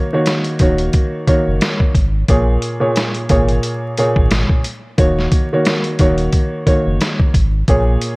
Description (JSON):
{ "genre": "hip hop, boom-bap hip-hop", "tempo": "89 BPM", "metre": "4/4", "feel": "swing 57% on 16ths", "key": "Eb minor", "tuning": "A4 = 441 Hz", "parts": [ { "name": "dark grand piano", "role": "accompaniment", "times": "0.0-8.2 s", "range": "Bb2 to Db5", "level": "-17 LUFS", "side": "equal", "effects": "cassette tape, high-pass filter, low-pass filter" }, { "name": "boom bap sampler-style drum kit", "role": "drums", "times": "0.3-8.2 s", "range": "hi-hat, kick drum, snare drum", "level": "-15 LUFS", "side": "equal", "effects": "none" }, { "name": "sub bass with octave", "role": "bass", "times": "0.6-8.0 s", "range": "Eb1 to Bb1", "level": "-17 LUFS", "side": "equal", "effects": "none" } ], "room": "little or no reverb", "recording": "worn, warbling old tape, cassette tape, vinyl crackle, warbly pitch drift", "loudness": "-13 LUFS", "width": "side -27 dB against mid", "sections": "0.0-8.2 A section", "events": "none", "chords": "0.0 Ebm7; 2.3 Bbm7; 5.0 Ebm7", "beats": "0.26 0.94 1.61 | 2.29 2.96 3.63 4.31 | 4.98 5.66 6.33 7.00 | 7.68" }